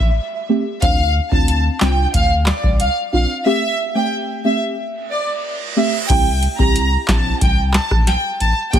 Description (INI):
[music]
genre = dancehall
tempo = 91 BPM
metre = 4/4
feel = straight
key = unclear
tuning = A4 = 444 Hz
[part]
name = saturated sub bass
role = bass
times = 0.0-8.8 s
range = G1 to D2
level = -18 LUFS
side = equal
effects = none
[part]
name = booming analog drum machine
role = drums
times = 0.0-8.8 s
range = crash cymbal, handclaps, hi-hat, kick drum, rim click, snare drum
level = -16 LUFS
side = equal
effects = none
[part]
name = deep mellow chord stab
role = accompaniment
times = 0.5-8.8 s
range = A3 to G4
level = -21 LUFS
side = equal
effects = chorus, phaser
[part]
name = warm studio violin section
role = melody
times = 0.8-8.8 s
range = D5 to Bb5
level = -20 LUFS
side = right 1 dB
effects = ping-pong delay
[part]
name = reverse cymbal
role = sound effects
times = 5.0-6.1 s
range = none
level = -27 LUFS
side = right 6 dB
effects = none
[sound]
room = digital ambience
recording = heavily compressed radio sound, multiband compression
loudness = -15 LUFS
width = side -10 dB against mid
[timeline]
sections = 0.0-6.1 A section; 6.1-8.8 B section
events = break 3.5-6.1; reverse cymbal 5.0-6.1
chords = 0.0 Am7; 0.8 Dm7; 3.5 Am7; 6.1 C